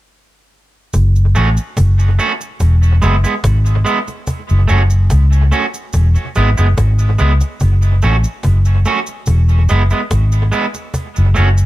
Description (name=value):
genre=roots reggae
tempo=72 BPM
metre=4/4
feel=straight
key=unclear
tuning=A4 = 440 Hz
part: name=vintage muted fingered electric bass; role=bass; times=0.9-11.7 s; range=E1 to C#2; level=-10 LUFS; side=equal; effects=none
part: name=cajon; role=drums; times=0.9-11.7 s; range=none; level=-23 LUFS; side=equal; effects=analog delay
part: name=cabasa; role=percussion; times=0.9-11.7 s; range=none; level=-33 LUFS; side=right 2 dB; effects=none
part: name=electric guitar at the edge of break-up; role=accompaniment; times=1.4-11.5 s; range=G#3 to F#4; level=-19 LUFS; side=right 4 dB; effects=tape echo
room=little or no reverb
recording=echo-heavy mix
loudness=-11 LUFS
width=side -16 dB against mid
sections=0.9-11.7 A section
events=none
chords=0.9 F#m; 2.6 E; 4.3 F#m; 5.9 E; 7.6 F#m; 9.3 E; 10.9 F#m